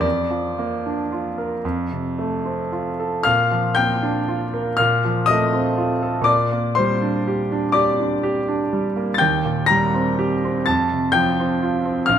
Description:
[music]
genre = classical, romantic nocturne for solo piano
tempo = 36-43 BPM (dotted quarters)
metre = 6/8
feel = rubato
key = Bb major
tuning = A4 = 440 Hz
[part]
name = clear grand piano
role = solo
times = 0.0-12.2 s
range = Bb1 to Bb6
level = -18 LUFS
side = equal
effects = none
[sound]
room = moderate recital hall reverb, RT60 1.7 s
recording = close, detailed microphones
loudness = -18 LUFS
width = side -9 dB against mid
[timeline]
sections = 0.0-3.2 A section; 3.2-12.2 B section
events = none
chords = 0.0 Bb/F; 1.6 F; 3.2 Bb; 4.8 F/Bb; 6.3 Gm/Bb; 9.2 Cm7/Eb; 10.7 F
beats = | 0.04 1.63 | 3.25 4.79 | 6.27 7.74 | 9.19 10.66 | 12.07

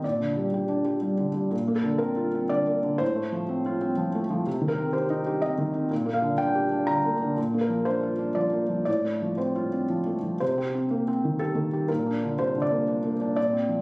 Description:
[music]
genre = neoclassical minimalist piano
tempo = 122 BPM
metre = 3/4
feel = rubato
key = C dorian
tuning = A4 = 438 Hz
[part]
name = felt-muted upright piano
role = solo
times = 0.0-13.8 s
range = A2 to Bb5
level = -23 LUFS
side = equal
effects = none
[sound]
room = light reverb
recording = recorded on a phone in the room, studio reverb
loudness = -23 LUFS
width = side -26 dB against mid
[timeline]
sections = 0.0-10.4 A section; 10.4-13.8 B section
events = none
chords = 0.0 Gm/Bb; 1.5 Bbadd9; 3.0 F/A; 4.5 Cm; 5.9 Gm/Bb; 7.4 Bbadd9; 8.9 F/A; 10.4 Cm; 11.9 Bbadd9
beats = | 0.04 0.53 1.03 | 1.52 2.02 2.51 | 3.01 3.49 3.98 | 4.46 4.94 5.43 | 5.91 6.40 6.88 | 7.38 7.86 8.36 | 8.87 9.39 9.90 | 10.41 10.91 11.40 | 11.89 12.38 12.88 | 13.37

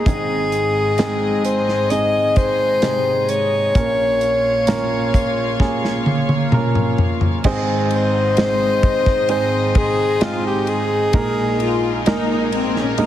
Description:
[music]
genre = pop ballad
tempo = 65 BPM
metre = 4/4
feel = straight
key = Ab major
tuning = A4 = 440 Hz
[part]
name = breathy alto saxophone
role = melody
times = 0.0-12.1 s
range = F4 to Eb5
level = -19 LUFS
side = left 2 dB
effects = none
[part]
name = warm baby grand piano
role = accompaniment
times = 0.0-13.1 s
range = Ab1 to C5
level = -21 LUFS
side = right 3 dB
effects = none
[part]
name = warm studio string section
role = sustained chords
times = 0.0-13.1 s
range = Ab2 to F5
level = -25 LUFS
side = left 2 dB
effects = none
[part]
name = modern studio drum kit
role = drums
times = 0.1-13.1 s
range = crash cymbal, hi-hat, kick drum, ride cymbal, snare drum, toms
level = -20 LUFS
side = equal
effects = none
[part]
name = rich studio cello section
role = second line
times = 11.6-13.1 s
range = C4 to F4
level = -22 LUFS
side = left 6 dB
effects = none
[sound]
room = light reverb, small room ambience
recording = heavily compressed radio sound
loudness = -15 LUFS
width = side -11 dB against mid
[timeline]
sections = 0.0-7.4 A section; 7.4-13.1 B section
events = drum fill 5.6-7.4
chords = 0.1 Ab; 3.8 Bbm; 7.4 Ab; 11.1 Ebsus4/Bb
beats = | 0.06 0.99 1.91 2.83 | 3.75 4.68 5.60 6.53 | 7.45 8.37 9.29 10.22 | 11.14 12.06 12.99

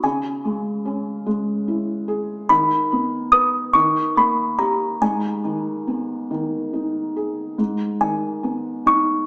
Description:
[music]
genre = children's music, lullaby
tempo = 47 BPM (dotted quarters)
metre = 6/8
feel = rubato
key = G# minor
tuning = A4 = 441 Hz
[part]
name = music box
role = melody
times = 0.0-9.3 s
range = G#5 to D#6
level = -17 LUFS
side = equal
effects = tape echo
[part]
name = felt-muted upright piano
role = accompaniment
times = 0.0-9.3 s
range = G#2 to B4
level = -22 LUFS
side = equal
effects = none
[sound]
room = wet recital hall reverb, RT60 1.4 s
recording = small speaker sound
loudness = -18 LUFS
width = side -27 dB against mid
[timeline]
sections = 0.0-7.6 A section; 7.6-9.3 B section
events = none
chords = 0.0 C#m; 2.5 B/D#; 3.7 D#; 5.0 G#m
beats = | 0.04 1.27 | 2.50 3.75 | 5.01 6.30 | 7.59 8.87

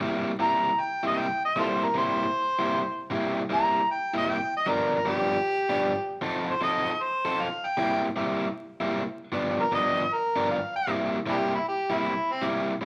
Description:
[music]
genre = blues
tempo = 155 BPM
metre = 4/4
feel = swing 65% on 8ths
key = C mixolydian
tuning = A4 = 441 Hz
[part]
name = overdriven electric guitar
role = riff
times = 0.0-12.8 s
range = G2 to A4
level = -30 LUFS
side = equal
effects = none
[part]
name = overdriven harmonica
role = melody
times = 0.4-12.4 s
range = C4 to Bb5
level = -28 LUFS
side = equal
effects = none
[sound]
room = moderate large studio reverb, RT60 0.9 s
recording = vinyl crackle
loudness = -27 LUFS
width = mono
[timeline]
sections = 0.0-10.9 A section; 10.9-12.8 A section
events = harmonica solo 0.0-10.9, 10.9-12.8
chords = 0.0 C7; 4.7 G7; 6.2 F7; 7.8 C7; 9.3 G7; 10.9 C7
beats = | 0.01 0.40 0.79 1.18 | 1.57 1.95 2.34 2.73 | 3.12 3.51 3.90 4.28 | 4.67 5.06 5.45 5.84 | 6.22 6.61 7.00 7.39 | 7.78 8.16 8.55 8.94 | 9.33 9.72 10.10 10.49 | 10.88 11.27 11.66 12.04 | 12.43 12.82

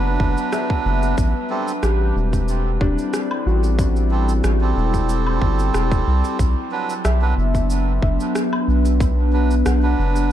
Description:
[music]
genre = ambient dub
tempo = 92 BPM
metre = 4/4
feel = swing 54% on 16ths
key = A dorian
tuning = A4 = 438 Hz
[part]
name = warbly tape-like pad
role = sustained chords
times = 0.0-10.3 s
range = F#3 to B4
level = -24 LUFS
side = left 2 dB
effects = chorus, built-in reverb
[part]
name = felt-muted upright piano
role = arpeggios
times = 0.0-10.3 s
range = D4 to F#5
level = -30 LUFS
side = left 4 dB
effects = dub echo
[part]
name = melodica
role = stabs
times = 0.0-10.3 s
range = F#3 to B4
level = -26 LUFS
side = right 5 dB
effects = dub echo
[part]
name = soft dub sub bass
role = bass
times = 0.0-10.3 s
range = E1 to C2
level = -18 LUFS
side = equal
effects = none
[part]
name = electronic kick drum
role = drums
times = 0.2-9.1 s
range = none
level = -22 LUFS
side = equal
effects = overdrive
[part]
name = electronic cabasa, rim click and woodblock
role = drums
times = 0.4-10.3 s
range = none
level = -29 LUFS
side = equal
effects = overdrive, dub echo
[sound]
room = light reverb, digital ambience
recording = dark, warm production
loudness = -17 LUFS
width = side -11 dB against mid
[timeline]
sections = 0.0-10.3 A section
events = none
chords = 0.0 Bm; 1.2 Am7; 6.4 Bm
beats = 0.53 | 1.18 1.83 2.48 3.14 | 3.79 4.44 5.09 5.75 | 6.40 7.05 7.70 8.36 | 9.01 9.66 10.31

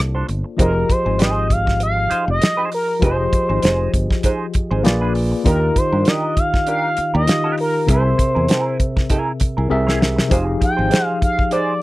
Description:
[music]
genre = lush 1970s-style soul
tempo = 99 BPM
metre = 4/4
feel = swing 54% on 16ths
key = unclear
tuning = A4 = 440 Hz
[part]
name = tine electric piano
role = accompaniment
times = 0.0-11.8 s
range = C3 to F5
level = -22 LUFS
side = left 2 dB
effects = medium stereo tremolo
[part]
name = mellow French horn section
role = sustained chords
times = 0.0-0.6 s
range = C3 to A4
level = -38 LUFS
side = left 1 dB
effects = none
[part]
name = semi-hollow electric guitar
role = riff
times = 0.0-11.7 s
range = D4 to C5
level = -24 LUFS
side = right 3 dB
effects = wah
[part]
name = fingered electric bass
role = bass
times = 0.0-10.9 s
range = F1 to G2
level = -20 LUFS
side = equal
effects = none
[part]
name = damped 70s drum kit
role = drums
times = 0.0-11.7 s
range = hi-hat, kick drum, rim click, snare drum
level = -18 LUFS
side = equal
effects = none
[part]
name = expressive synth lead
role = melody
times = 0.6-11.8 s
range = Bb4 to G5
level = -20 LUFS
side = equal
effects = chorus
[sound]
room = little or no reverb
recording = dry, close 1970s-style studio recording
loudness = -15 LUFS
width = side -18 dB against mid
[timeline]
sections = 0.6-11.8 A section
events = drum fill 9.7-10.3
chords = 0.0 Bbmaj9; 0.6 Fm7; 4.8 Bb7b9; 5.5 Ebmaj7; 7.9 C7b13; 10.3 Fm7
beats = | 0.59 1.20 1.81 2.42 | 3.02 3.63 4.24 4.85 | 5.46 6.06 6.67 7.28 | 7.89 8.49 9.10 9.71 | 10.31 10.92 11.52

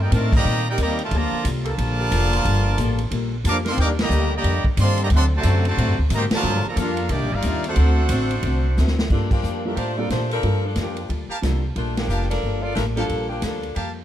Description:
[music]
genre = jazz, big band swing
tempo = 180 BPM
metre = 4/4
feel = swing 63% on 8ths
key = G minor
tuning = A4 = 440 Hz
[part]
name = brilliant trumpet section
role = melody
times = 0.0-8.9 s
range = Bb3 to D6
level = -25 LUFS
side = equal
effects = none
[part]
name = bright trombone section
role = second line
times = 0.0-8.9 s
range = C3 to G4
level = -27 LUFS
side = right 2 dB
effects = none
[part]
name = upright bass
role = bass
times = 0.0-14.0 s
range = F1 to Bb2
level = -21 LUFS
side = equal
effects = none
[part]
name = picked acoustic archtop guitar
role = accompaniment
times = 0.1-14.0 s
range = C3 to D5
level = -30 LUFS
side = left 5 dB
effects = none
[part]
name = bright saxophone section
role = sustained chords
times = 0.1-7.9 s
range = Eb3 to Bb4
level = -35 LUFS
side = left 1 dB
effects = none
[part]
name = swinging big-band drum kit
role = drums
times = 0.1-13.9 s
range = crash cymbal, hi-hat, kick drum, ride cymbal, snare drum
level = -27 LUFS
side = equal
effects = none
[part]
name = bright saxophone section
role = melody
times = 9.1-13.8 s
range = F3 to D5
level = -27 LUFS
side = left 2 dB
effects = none
[part]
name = warm baby grand piano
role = accompaniment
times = 9.1-13.4 s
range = G3 to A4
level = -31 LUFS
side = right 3 dB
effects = none
[part]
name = brilliant trumpet section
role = stabs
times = 9.8-13.9 s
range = G4 to A5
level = -33 LUFS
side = right 2 dB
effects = none
[sound]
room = light reverb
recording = dark, warm production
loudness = -19 LUFS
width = side -11 dB against mid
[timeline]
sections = 0.0-9.1 A section; 9.1-14.0 B section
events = band accent 0.3, 3.9, 6.3, 9.3, 11.9; drum fill 8.8-9.1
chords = 0.0 Cm9; 1.1 Gm9; 3.8 Ebmaj7; 5.1 D7; 6.4 Gm9; 7.1 Cm9; 7.8 D7; 9.1 Gm9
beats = 0.12 0.45 0.78 | 1.11 1.45 1.78 2.11 | 2.44 2.77 3.11 3.44 | 3.77 4.11 4.44 4.77 | 5.10 5.43 5.77 6.10 | 6.43 6.77 7.10 7.43 | 7.76 8.10 8.43 8.76 | 9.10 9.43 9.76 10.10 | 10.43 10.76 11.10 11.43 | 11.76 12.09 12.43 12.76 | 13.09 13.42 13.76

